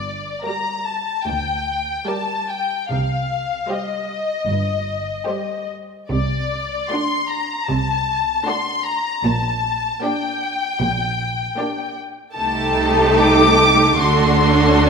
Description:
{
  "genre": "classical, slow romantic movement for string orchestra",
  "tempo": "76 BPM",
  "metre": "4/4",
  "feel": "rubato",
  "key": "G minor",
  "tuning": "A4 = 441 Hz",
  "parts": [
    { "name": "warm studio violin section", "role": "melody", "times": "0.0-14.9 s", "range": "D5 to D6", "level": "-20 LUFS", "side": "left 3 dB", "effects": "none" },
    { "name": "rich studio cello section", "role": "bass", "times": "0.0-14.9 s", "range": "D2 to D3", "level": "-24 LUFS", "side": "right 3 dB", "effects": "none" },
    { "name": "rich studio double bass section", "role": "bass", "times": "0.0-14.9 s", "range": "G1 to D2", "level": "-25 LUFS", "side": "right 2 dB", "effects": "none" },
    { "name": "warm studio violin section", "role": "second line", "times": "0.5-14.9 s", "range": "F#4 to D5", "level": "-23 LUFS", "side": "left 2 dB", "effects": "none" },
    { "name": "warm studio viola section", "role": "accompaniment", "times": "0.5-14.9 s", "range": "G3 to G4", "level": "-20 LUFS", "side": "right 2 dB", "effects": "none" }
  ],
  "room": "moderate scoring stage reverb, RT60 1.7 s",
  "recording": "minimal, uncompressed stereo recording",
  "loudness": "-17 LUFS",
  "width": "side -5 dB against mid",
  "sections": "0.0-14.9 A section",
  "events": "none",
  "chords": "0.0 Gm; 2.9 Cm; 6.1 D7/C; 9.3 Gm/Bb; 12.4 Am7b5/C; 14.0 D7",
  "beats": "0.46 1.27 2.08 | 2.90 3.70 4.48 5.29 | 6.11 6.92 7.70 8.48 | 9.26 10.04 10.81 11.59 | 12.37 13.21 13.99 14.78"
}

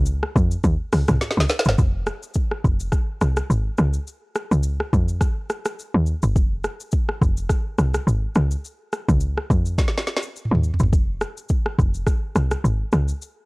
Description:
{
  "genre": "afrobeats",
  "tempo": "105 BPM",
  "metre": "4/4",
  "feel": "swing 55% on 16ths",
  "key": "F minor",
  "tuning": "A4 = 441 Hz",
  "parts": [
    { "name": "woody log drum bass", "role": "bass", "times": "0.0-13.1 s", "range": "F1 to F2", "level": "-20 LUFS", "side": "equal", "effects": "none" },
    { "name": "afro-pop drum kit", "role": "drums", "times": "0.1-13.4 s", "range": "hi-hat, kick drum, rim click, shaker, snare drum, toms", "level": "-22 LUFS", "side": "equal", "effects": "none" }
  ],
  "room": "digital ambience",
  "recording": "dry, gritty hardware recording",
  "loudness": "-19 LUFS",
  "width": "side -28 dB against mid",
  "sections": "0.0-1.8 A section; 1.8-13.5 B section",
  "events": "drum fill 1.2-1.8, 9.8-10.9",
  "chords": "none",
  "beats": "0.07 0.64 1.21 | 1.78 2.36 2.93 3.50 | 4.07 4.64 5.21 5.78 | 6.36 6.93 7.50 8.07 | 8.64 9.21 9.78 10.36 | 10.93 11.50 12.07 12.64 | 13.21"
}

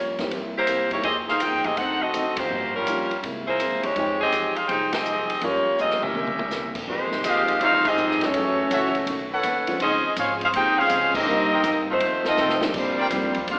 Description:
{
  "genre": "jazz, big band swing",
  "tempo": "164 BPM",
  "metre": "4/4",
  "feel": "swing 65% on 8ths",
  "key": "F minor",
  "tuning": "A4 = 441 Hz",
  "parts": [
    { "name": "clear saxophone section", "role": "melody", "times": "0.0-13.6 s", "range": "G3 to G5", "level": "-25 LUFS", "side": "equal", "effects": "none" },
    { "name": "vintage hollow-body jazz guitar", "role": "accompaniment", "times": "0.0-13.6 s", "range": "F2 to Ab4", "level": "-37 LUFS", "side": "equal", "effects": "none" },
    { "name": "upright bass", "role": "bass", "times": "0.0-13.6 s", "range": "G1 to C3", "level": "-43 LUFS", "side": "equal", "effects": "none" },
    { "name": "warm baby grand piano", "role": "accompaniment", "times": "0.2-13.3 s", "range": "D3 to G5", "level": "-35 LUFS", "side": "equal", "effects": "none" },
    { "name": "swinging big-band drum kit", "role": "drums", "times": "0.2-13.6 s", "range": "crash cymbal, hi-hat, kick drum, ride cymbal, snare drum, toms", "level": "-34 LUFS", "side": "equal", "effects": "none" },
    { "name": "mellow trombone section", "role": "second line", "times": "6.0-13.6 s", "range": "Eb3 to G4", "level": "-32 LUFS", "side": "equal", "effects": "none" },
    { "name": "clear trumpet section", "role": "stabs", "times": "7.2-13.1 s", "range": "Db4 to G5", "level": "-29 LUFS", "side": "equal", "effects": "none" }
  ],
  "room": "wet recital hall reverb, RT60 1.8 s",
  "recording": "recorded in a church or concert hall, AM radio sound",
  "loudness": "-23 LUFS",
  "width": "mono",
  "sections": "0.0-6.9 A section; 6.9-13.6 B section",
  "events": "band accent 2.3, 4.9, 7.8, 11.1; drum fill 5.8-6.5, 12.4-12.7",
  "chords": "0.3 C7; 1.1 Fm11; 1.8 D7b9; 2.5 Gm7b5; 3.2 C7alt; 4.0 Fm9; 5.4 Gm7b5; 6.2 C7b9; 6.9 Fm9; 8.3 Gbm7; 9.1 B9; 9.8 Dbmaj7; 11.3 Cm7; 12.0 F7; 12.7 Bb69",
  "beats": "0.32 0.69 | 1.05 1.42 1.78 2.15 | 2.51 2.88 3.24 3.60 | 3.97 4.33 4.70 5.06 | 5.43 5.79 6.16 6.52 | 6.89 7.25 7.62 7.98 | 8.35 8.71 9.08 9.44 | 9.81 10.17 10.54 10.91 | 11.27 11.64 12.01 12.37 | 12.74 13.11 13.47"
}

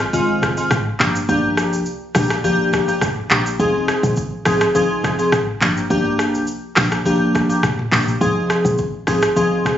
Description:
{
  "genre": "afrobeats",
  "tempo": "104 BPM",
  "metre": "4/4",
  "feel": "straight",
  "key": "F dorian",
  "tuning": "A4 = 440 Hz",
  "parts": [
    { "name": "glassy digital keys", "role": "accompaniment", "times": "0.0-9.8 s", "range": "Eb3 to Ab4", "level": "-17 LUFS", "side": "left 1 dB", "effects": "chorus" },
    { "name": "deep log drum bass", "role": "bass", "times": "0.0-9.8 s", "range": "F1 to C2", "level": "-25 LUFS", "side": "equal", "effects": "none" },
    { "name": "afro-pop drum kit", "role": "drums", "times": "0.1-9.8 s", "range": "handclaps, hi-hat, kick drum, rim click, shaker, toms", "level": "-20 LUFS", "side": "equal", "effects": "none" }
  ],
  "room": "light reverb",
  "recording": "recorded on a phone in the room, studio reverb, nothing above 7.6 kHz",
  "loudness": "-15 LUFS",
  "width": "side -10 dB against mid",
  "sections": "0.0-9.8 A section",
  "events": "none",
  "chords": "0.0 Fm7; 1.0 Gm7; 3.6 Fm7; 5.6 Gm7; 8.2 Fm7",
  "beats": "0.14 0.71 | 1.29 1.87 2.44 3.02 | 3.60 4.17 4.75 5.33 | 5.90 6.48 7.06 7.63 | 8.21 8.79 9.37"
}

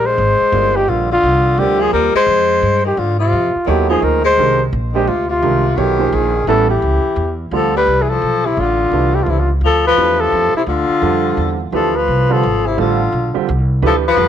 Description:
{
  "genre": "modal jazz",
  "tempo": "172 BPM",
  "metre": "3/4",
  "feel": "swing 63% on 8ths",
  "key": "F dorian, D dorian from 7.5 s",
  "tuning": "A4 = 440 Hz",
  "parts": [
    { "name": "trumpet with bucket mute", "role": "melody", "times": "0.0-14.3 s", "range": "E4 to C5", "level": "-16 LUFS", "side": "equal", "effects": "none" },
    { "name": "clear tenor saxophone", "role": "second line", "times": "0.0-14.3 s", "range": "C3 to Ab3", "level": "-20 LUFS", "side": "left 10 dB", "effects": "none" },
    { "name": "upright bass", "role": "bass", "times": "0.0-14.3 s", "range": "G1 to Ab2", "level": "-19 LUFS", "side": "equal", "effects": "none" },
    { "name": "warm grand piano", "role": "accompaniment", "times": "0.5-14.3 s", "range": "D3 to Eb5", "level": "-20 LUFS", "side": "right 12 dB", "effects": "none" }
  ],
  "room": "light reverb, small room ambience",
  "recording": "1960s-style stereo with parts hard left and right",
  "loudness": "-12 LUFS",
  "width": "side -9 dB against mid",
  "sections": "0.0-7.5 A section; 7.5-14.3 B section",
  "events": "none",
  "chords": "0.0 Fm69; 3.3 Ab; 6.5 A7; 7.5 Dm7",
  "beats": "| 0.19 0.54 0.89 | 1.24 1.58 1.94 | 2.29 2.63 2.98 | 3.33 3.68 4.03 | 4.38 4.73 5.08 | 5.43 5.78 6.13 | 6.48 6.83 7.18 | 7.53 7.88 8.23 | 8.58 8.93 9.28 | 9.63 9.98 10.33 | 10.68 11.03 11.38 | 11.73 12.08 12.43 | 12.78 13.13 13.48 | 13.83 14.18"
}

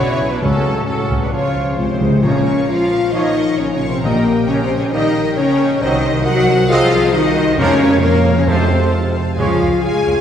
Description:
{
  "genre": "cinematic, heroic adventure film score",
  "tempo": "134 BPM",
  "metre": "4/4",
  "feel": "straight",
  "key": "Bb minor",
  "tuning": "A4 = 440 Hz",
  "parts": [
    { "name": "warm symphonic violin section", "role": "melody", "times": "0.0-10.2 s", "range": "A4 to Ab5", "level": "-25 LUFS", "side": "left 4 dB", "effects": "none" },
    { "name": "dark symphonic violin section", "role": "second line", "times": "0.0-10.2 s", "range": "C#4 to Db6", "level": "-29 LUFS", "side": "left 1 dB", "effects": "none" },
    { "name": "large flute ensemble", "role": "second line", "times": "0.0-10.2 s", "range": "Bb4 to A5", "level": "-26 LUFS", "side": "right 1 dB", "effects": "none" },
    { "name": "mellow clarinet", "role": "second line", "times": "0.0-10.2 s", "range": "E#4 to Db5", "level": "-24 LUFS", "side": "left 2 dB", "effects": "none" },
    { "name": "mellow cor anglais", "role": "second line", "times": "0.0-2.0 s", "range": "B4 to C#5", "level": "-28 LUFS", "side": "right 3 dB", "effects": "none" },
    { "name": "rich symphonic viola section", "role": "accompaniment", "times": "0.0-10.1 s", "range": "F4 to G5", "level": "-28 LUFS", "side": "right 1 dB", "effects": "none" },
    { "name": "clear trombone section", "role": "sustained chords", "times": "0.0-9.5 s", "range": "B2 to C4", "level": "-26 LUFS", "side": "right 2 dB", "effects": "none" },
    { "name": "mellow French horn section", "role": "sustained chords", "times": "0.0-10.2 s", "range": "G#3 to Ab4", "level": "-18 LUFS", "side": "left 3 dB", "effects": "none" },
    { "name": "concert harp", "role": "arpeggios", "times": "0.0-10.2 s", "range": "Bb2 to Db6", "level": "-26 LUFS", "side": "left 4 dB", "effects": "none" },
    { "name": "clear trumpet section", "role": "stabs", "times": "0.0-9.5 s", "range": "C#4 to Eb5", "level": "-27 LUFS", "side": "right 1 dB", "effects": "none" },
    { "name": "rich symphonic cello section", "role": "bass", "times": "0.0-10.2 s", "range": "A2 to Ab3", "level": "-22 LUFS", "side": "right 2 dB", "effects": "none" },
    { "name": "rich symphonic double bass section", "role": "bass", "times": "0.0-10.2 s", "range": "Bb1 to F2", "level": "-21 LUFS", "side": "right 2 dB", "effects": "none" },
    { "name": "timpani", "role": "percussion", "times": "0.4-4.7, 7.6-9.1 s", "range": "F2 to C#3", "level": "-21 LUFS", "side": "equal", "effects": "none" }
  ],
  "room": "wet scoring stage reverb, RT60 1.4 s",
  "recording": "heard from further back in the room",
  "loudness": "-13 LUFS",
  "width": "side -9 dB against mid",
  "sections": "0.0-2.2 A section; 2.2-10.2 B section",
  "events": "timpani fill 1.3-2.2",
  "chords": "0.4 F#m/C#; 1.3 C#; 2.2 Bbm; 4.0 Eb/Bb; 5.8 Cdim; 7.6 Bbm/F; 8.5 F; 9.4 Db",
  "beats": "| 0.42 0.88 1.33 1.79 | 2.25 2.70 3.15 3.59 | 4.04 4.49 4.93 5.38 | 5.82 6.26 6.70 7.14 | 7.59 8.03 8.48 8.94 | 9.39 9.84"
}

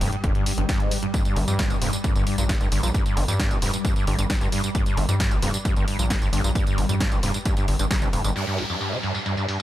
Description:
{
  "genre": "driving peak-time techno",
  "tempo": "133 BPM",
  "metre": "4/4",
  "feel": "straight",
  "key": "unclear",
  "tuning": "A4 = 438 Hz",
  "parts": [
    { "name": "screaming distorted acid line", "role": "riff", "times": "0.0-9.6 s", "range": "G1 to C#3", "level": "-27 LUFS", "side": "equal", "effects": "distortion, wide subtle chorus, sidechain pumping, digital delay" },
    { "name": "gritty driven synth bass", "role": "bass", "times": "0.0-8.3 s", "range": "D1 to G2", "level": "-25 LUFS", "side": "equal", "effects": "sidechain pumping" },
    { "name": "swarming drone", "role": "drone", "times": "0.0-9.6 s", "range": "G2 to G3", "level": "-32 LUFS", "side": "equal", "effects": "built-in reverb, sidechain pumping" },
    { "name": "punchy analog drum machine", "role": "drums", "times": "0.0-9.6 s", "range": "crash cymbal, hi-hat, snare drum, tambourine", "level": "-30 LUFS", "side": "equal", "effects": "sidechain pumping on hats, low-pass filter on hats, low-pass filter on snare, sidechain pumping on perc, low-pass filter on perc, sidechain pumping on cymbals, low-pass filter on cymbals, low-pass filter on room" },
    { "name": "electronic kick drum", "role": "drums", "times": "0.2-8.0 s", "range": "none", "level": "-24 LUFS", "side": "equal", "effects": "none" },
    { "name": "downlifter", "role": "sound effects", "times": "8.4-9.6 s", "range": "none", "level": "-30 LUFS", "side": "equal", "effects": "none" }
  ],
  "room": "little or no reverb",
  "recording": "none",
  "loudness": "-21 LUFS",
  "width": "side -14 dB against mid",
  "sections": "0.0-8.4 A section; 8.4-9.6 B section",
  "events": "none",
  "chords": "none",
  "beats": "0.24 0.69 | 1.14 1.59 2.04 2.49 | 2.94 3.40 3.85 4.30 | 4.75 5.20 5.65 6.10 | 6.55 7.00 7.46 7.91 | 8.36 8.81 9.26"
}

